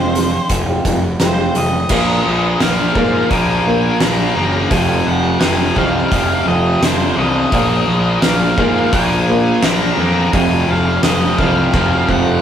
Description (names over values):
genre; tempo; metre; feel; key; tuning
quiet-loud alternative rock; 85 BPM; 4/4; straight; unclear; A4 = 441 Hz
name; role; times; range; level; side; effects
octave-fuzz lead guitar; melody; 0.0-12.4 s; C5 to Bb5; -21 LUFS; left 1 dB; distortion, slapback echo
fingerpicked old ladder-braced acoustic guitar; arpeggios; 0.0-12.4 s; F2 to F4; -19 LUFS; right 1 dB; none
fuzz picked electric bass; bass; 0.0-12.4 s; F1 to Ab2; -19 LUFS; equal; overdrive
oversized low-tuned drum kit; drums; 0.2-12.3 s; crash cymbal, hi-hat, kick drum, snare drum; -19 LUFS; equal; none
distorted electric guitar; riff; 1.9-12.4 s; F2 to Bb3; -17 LUFS; equal; overdrive
room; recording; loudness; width
light reverb; rough rehearsal-room recording, warm saturation; -12 LUFS; side -9 dB against mid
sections
0.0-1.9 A section; 1.9-12.4 B section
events
drum fill 11.7-12.4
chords
0.0 Fm; 1.9 Bb5; 4.7 F5; 7.5 Bb5; 10.3 F5